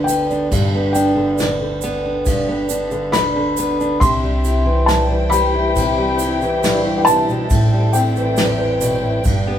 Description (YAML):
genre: acoustic folk duo or small band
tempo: 69 BPM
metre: 4/4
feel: straight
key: G major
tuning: A4 = 438 Hz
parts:
  - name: felt-muted upright piano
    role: melody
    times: 0.0-9.6 s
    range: G5 to C6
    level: -20 LUFS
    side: left 2 dB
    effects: none
  - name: fingerpicked steel-string acoustic guitar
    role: accompaniment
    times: 0.0-9.6 s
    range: D2 to E4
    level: -18 LUFS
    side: equal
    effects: none
  - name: upright bass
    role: bass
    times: 0.0-9.6 s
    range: G1 to C2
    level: -22 LUFS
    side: equal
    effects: none
  - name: soft brush drum kit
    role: drums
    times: 0.1-9.5 s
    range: kick drum, ride cymbal, snare drum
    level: -23 LUFS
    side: equal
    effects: none
  - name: egg shaker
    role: percussion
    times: 0.1-9.5 s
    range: none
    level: -29 LUFS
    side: right 9 dB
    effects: none
  - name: muted chamber string section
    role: sustained chords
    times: 4.0-9.6 s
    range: D4 to G5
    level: -25 LUFS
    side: left 1 dB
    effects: none
room: moderate large studio reverb, RT60 0.9 s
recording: band playing live in one room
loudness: -15 LUFS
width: side -10 dB against mid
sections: 0.0-9.6 A section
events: none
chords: 0.0 G; 4.0 C; 7.5 Am7